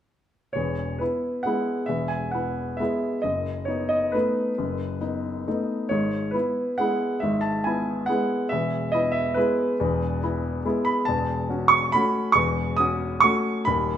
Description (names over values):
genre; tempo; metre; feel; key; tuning
classical, piano waltz; 137 BPM; 3/4; uneven beats, rubato; E major; A4 = 440 Hz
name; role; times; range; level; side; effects
clear baby grand piano; solo; 0.5-14.0 s; D#1 to D#6; -22 LUFS; equal; none
room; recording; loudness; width
wet stone room reverb, RT60 1.0 s; none; -22 LUFS; side -9 dB against mid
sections
0.6-14.0 A section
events
none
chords
0.6 E; 3.2 B7/F#; 5.9 E/G#; 8.5 E; 11.1 F#m7/E